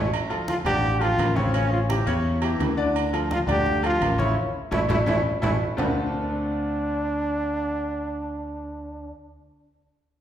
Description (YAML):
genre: latin, salsa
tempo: 170 BPM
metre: 4/4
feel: straight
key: D minor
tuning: A4 = 439 Hz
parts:
  - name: bright upright piano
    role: accompaniment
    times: 0.0-9.1 s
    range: C#3 to D5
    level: -28 LUFS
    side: left 2 dB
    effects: none
  - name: fingered electric bass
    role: bass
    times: 0.0-9.1 s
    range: A1 to E2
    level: -28 LUFS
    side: equal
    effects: none
  - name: agogo bells and timbales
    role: percussion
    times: 0.1-5.9 s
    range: none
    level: -30 LUFS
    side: right 3 dB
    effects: none
  - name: congas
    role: percussion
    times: 0.1-5.9 s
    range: none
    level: -31 LUFS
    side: equal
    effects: none
  - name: bright trombone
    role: melody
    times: 0.5-9.1 s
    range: C4 to G4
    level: -26 LUFS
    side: right 1 dB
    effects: none
room: wet recital hall reverb, RT60 1.5 s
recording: recorded in a church or concert hall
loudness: -22 LUFS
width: side -10 dB against mid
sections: 0.1-5.8 A section; 5.8-8.6 B section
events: band accent 4.4-5.8; drum fill 5.2-5.8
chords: 0.1 Dm; 1.5 A7; 3.0 Dm; 4.4 A; 5.8 Dm7